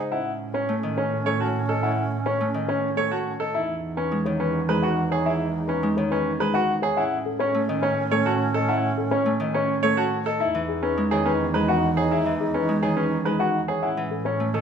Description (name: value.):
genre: classical, minimalist pattern music.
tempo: 105 BPM.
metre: 3/4.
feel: straight.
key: unclear.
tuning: A4 = 440 Hz.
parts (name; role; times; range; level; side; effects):
dark baby grand piano; melody; 0.0-14.6 s; G#4 to A5; -26 LUFS; left 6 dB; none.
Celtic harp; accompaniment; 0.0-14.6 s; Db3 to A3; -29 LUFS; equal; none.
bright grand piano; arpeggios; 0.0-14.6 s; C#4 to C#5; -27 LUFS; right 5 dB; none.
bright wooden-headed alto flute; second line; 0.1-14.6 s; C#4 to D#4; -30 LUFS; right 3 dB; none.
rich symphonic double bass section; bass; 0.1-14.6 s; E2 to A2; -30 LUFS; right 2 dB; none.
room: wet large studio reverb, RT60 1.4 s.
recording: none.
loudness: -21 LUFS.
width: side -7 dB against mid.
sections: 0.1-14.6 A section.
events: none.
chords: 0.1 A; 3.5 Emaj7; 7.0 A; 10.4 Emaj7; 13.8 A6.